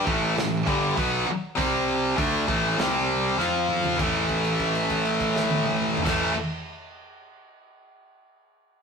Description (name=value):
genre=heavy metal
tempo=99 BPM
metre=4/4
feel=straight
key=A minor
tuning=A4 = 440 Hz
part: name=heavy high-gain guitar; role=riff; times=0.0-6.3 s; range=G2 to F4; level=-24 LUFS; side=left 4 dB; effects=distortion
part: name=heavy high-gain guitar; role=riff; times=0.0-6.3 s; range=G2 to F4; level=-27 LUFS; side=right 6 dB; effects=distortion
part: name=fuzz picked electric bass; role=bass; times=0.0-6.3 s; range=G1 to F2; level=-31 LUFS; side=right 1 dB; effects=overdrive
part: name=modern studio drum kit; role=drums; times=0.1-6.2 s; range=crash cymbal, hi-hat, kick drum, snare drum, toms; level=-31 LUFS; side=right 1 dB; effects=none
room=moderate stone room reverb, RT60 1.0 s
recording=rough rehearsal-room recording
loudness=-22 LUFS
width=side -5 dB against mid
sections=0.0-4.0 A section; 4.0-6.4 B section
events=drum fill 3.4-4.0; held note 4.0-6.1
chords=0.0 A5; 1.6 C5; 2.2 A5; 2.8 C5; 3.4 F5; 4.0 A5